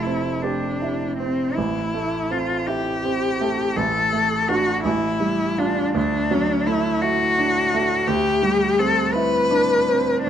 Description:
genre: classical, impressionist duo for cello and grand piano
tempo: 55 BPM (dotted quarters)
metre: 6/8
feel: rubato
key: A minor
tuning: A4 = 441 Hz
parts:
  - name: rich cello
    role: melody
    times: 0.0-10.3 s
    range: C4 to B4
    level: -21 LUFS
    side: left 3 dB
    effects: none
  - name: bright grand piano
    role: accompaniment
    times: 0.0-10.3 s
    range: F1 to G4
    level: -23 LUFS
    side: right 4 dB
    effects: none
room: moderate recital hall reverb, RT60 1.4 s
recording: close, detailed microphones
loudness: -19 LUFS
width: side -9 dB against mid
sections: 0.0-10.3 A section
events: none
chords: 0.0 Fmaj9; 1.6 Am; 3.8 D/A; 4.9 Gsus2/A; 6.0 Dadd9; 8.1 Cmaj9/D

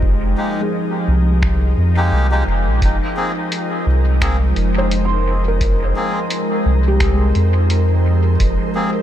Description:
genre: ambient dub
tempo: 86 BPM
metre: 4/4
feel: swing 56% on 16ths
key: unclear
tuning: A4 = 439 Hz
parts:
  - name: soft additive organ-like pad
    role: sustained chords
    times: 0.0-9.0 s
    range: F3 to C5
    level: -22 LUFS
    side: equal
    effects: ensemble chorus, built-in reverb
  - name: felt-muted upright piano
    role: arpeggios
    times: 0.0-9.0 s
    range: Ab3 to C6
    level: -26 LUFS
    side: right 1 dB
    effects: dub echo
  - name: soft dub sub bass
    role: bass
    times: 0.0-8.6 s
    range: F1 to F2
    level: -15 LUFS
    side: equal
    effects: none
  - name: electronic kick drum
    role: drums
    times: 0.0-8.6 s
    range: none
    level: -20 LUFS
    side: equal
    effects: overdrive, studio reverb
  - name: melodica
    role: stabs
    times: 0.4-8.9 s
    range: Ab3 to Ab4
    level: -25 LUFS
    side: left 1 dB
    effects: dub echo
  - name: lo-fi sampler-style drum kit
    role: drums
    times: 1.4-8.6 s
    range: finger snaps, hi-hat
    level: -30 LUFS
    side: equal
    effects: studio reverb, dub echo
  - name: wind-like tuned noise texture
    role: texture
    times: 3.6-9.0 s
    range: Bb4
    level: -29 LUFS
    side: right 2 dB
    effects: built-in reverb
room: little or no reverb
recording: none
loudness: -14 LUFS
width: side -11 dB against mid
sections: 0.0-9.0 A section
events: none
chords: 0.0 Fm11

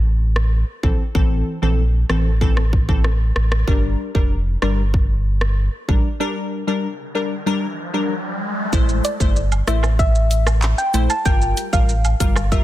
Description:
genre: dancehall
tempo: 95 BPM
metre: 4/4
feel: straight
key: A phrygian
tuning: A4 = 440 Hz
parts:
  - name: sub bass with octave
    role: bass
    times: 0.0-12.6 s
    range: F1 to Bb1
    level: -18 LUFS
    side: equal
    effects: none
  - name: pop drum kit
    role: drums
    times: 0.4-12.6 s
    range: handclaps, hi-hat, kick drum, rim click, shaker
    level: -20 LUFS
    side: equal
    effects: soft clipping on snare
  - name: wavetable chord stab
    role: accompaniment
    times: 0.8-12.6 s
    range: E3 to C5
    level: -24 LUFS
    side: left 1 dB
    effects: sidechain pumping
  - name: riser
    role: sound effects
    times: 7.0-8.7 s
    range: none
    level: -28 LUFS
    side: left 1 dB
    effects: none
  - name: soft round pluck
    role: melody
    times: 9.0-12.6 s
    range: D5 to A5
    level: -23 LUFS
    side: equal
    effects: chorus, ping-pong delay
  - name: cabasa and woodblock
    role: percussion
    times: 9.0-12.5 s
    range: none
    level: -31 LUFS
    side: right 6 dB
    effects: none
room: digital ambience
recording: dense, heavily limited modern master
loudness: -16 LUFS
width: side -14 dB against mid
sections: 0.0-8.7 A section; 8.7-12.6 B section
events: break 6.2-8.7; riser 7.0-8.7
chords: 0.0 Am; 3.7 Gm; 8.7 Am; 11.3 Gm7

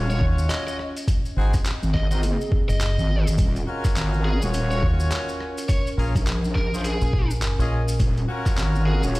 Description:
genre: glitch hop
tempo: 104 BPM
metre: 4/4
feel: swing 61% on 16ths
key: Eb dorian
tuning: A4 = 440 Hz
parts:
  - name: bright horn section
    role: stabs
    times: 0.0-9.2 s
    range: C4 to Eb5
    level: -30 LUFS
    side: left 1 dB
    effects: sidechain pumping, digital delay
  - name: wobble bass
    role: bass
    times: 0.0-9.2 s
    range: Eb1 to Bb1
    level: -22 LUFS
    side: equal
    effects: chorus, overdrive
  - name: warbly tape-like pad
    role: texture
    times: 0.0-9.2 s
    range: C4 to Ab5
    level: -34 LUFS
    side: right 1 dB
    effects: chorus, built-in reverb, sidechain pumping
  - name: biting lead guitar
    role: melody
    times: 0.1-9.0 s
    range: Ab4 to Eb5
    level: -33 LUFS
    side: equal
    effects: overdrive, digital delay
  - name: maracas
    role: percussion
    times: 0.1-9.2 s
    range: none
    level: -39 LUFS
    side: left 2 dB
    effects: none
  - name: deep dub fingered electric bass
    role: bass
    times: 0.2-8.0 s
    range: Gb1 to Eb2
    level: -22 LUFS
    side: equal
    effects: tube saturation
  - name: electronic kick drum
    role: drums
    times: 0.2-8.6 s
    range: none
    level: -22 LUFS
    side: equal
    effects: overdrive
  - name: boom bap sampler-style drum kit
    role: drums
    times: 0.5-9.2 s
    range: handclaps, hi-hat, rim click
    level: -32 LUFS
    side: equal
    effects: overdrive
room: little or no reverb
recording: played on a big sound system in a bare room, stone room reverb, vinyl crackle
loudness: -20 LUFS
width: side -20 dB against mid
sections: 0.0-9.2 A section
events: none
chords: 0.0 Ebm7; 1.1 Ab7; 3.4 Ebm7; 5.7 Bbm7; 8.0 Ebm7

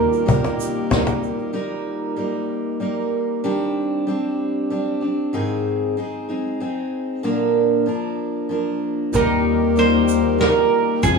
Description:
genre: acoustic folk duo or small band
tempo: 95 BPM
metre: 3/4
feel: straight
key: Eb major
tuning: A4 = 440 Hz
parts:
  - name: mandolin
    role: melody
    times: 0.0-0.9, 9.2-11.2 s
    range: Eb4 to Bb5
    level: -21 LUFS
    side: right 5 dB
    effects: slapback echo
  - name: lap resonator guitar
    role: second line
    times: 0.0-1.2, 9.2-11.2 s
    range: Ab4 to Bb4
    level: -24 LUFS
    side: right 7 dB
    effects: none
  - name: picked steel-string acoustic guitar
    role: accompaniment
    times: 0.0-11.2 s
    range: Ab2 to Bb4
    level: -21 LUFS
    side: equal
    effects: none
  - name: hand-pumped harmonium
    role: sustained chords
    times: 0.0-1.5, 9.1-11.2 s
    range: Eb3 to G4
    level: -26 LUFS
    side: right 4 dB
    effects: none
  - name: tube shaker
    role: percussion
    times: 0.1-1.3, 9.1-11.2 s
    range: none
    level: -35 LUFS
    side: right 9 dB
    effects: none
  - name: soft-mallet drum kit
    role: drums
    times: 0.3-1.1, 9.1-11.2 s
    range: kick drum, ride cymbal, snare drum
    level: -28 LUFS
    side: equal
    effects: none
  - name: cajon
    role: percussion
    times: 0.3-1.5 s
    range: none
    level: -21 LUFS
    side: left 3 dB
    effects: none
  - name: fretless electric bass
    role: bass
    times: 9.1-11.2 s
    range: Eb2 to F2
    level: -19 LUFS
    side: left 5 dB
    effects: none
room: moderate large studio reverb, RT60 1.2 s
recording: small room reverb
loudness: -18 LUFS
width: side -4 dB against mid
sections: 0.0-1.5 A section; 1.5-9.1 B section; 9.1-11.2 A section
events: none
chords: 0.0 Eb; 3.4 Cmadd9/Eb; 5.3 Ab; 7.2 Bb; 9.1 Eb

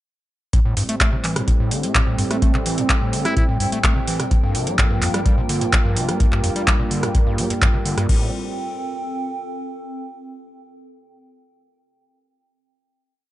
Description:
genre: acid house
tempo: 127 BPM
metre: 4/4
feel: straight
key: A phrygian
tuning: A4 = 440 Hz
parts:
  - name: warm analog pad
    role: sustained chords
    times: 0.5-8.3 s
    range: G2 to C4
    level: -26 LUFS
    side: right 1 dB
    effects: chorus, sidechain pumping
  - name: overdriven acid bass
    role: riff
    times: 0.5-8.3 s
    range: F2 to A3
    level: -24 LUFS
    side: equal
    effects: tube saturation
  - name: electro analog drum machine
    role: drums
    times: 0.5-8.2 s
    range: crash cymbal, handclaps, hi-hat, rim click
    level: -23 LUFS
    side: equal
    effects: none
  - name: electronic kick drum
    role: drums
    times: 0.5-8.2 s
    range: none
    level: -19 LUFS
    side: equal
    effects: none
  - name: warbly tape-like pad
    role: texture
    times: 1.2-9.9 s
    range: C4 to G5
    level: -28 LUFS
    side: right 1 dB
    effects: chorus, built-in reverb, sidechain pumping
  - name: trumpet with metal mute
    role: melody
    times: 3.2-3.4 s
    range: E4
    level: -27 LUFS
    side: left 1 dB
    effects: ping-pong delay
room: light reverb, digital ambience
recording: nothing above 10.5 kHz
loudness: -17 LUFS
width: side -15 dB against mid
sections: 0.5-8.1 groove; 8.1-10.0 final chord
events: none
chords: 0.5 Am7; 4.3 Gm7; 8.1 Am7

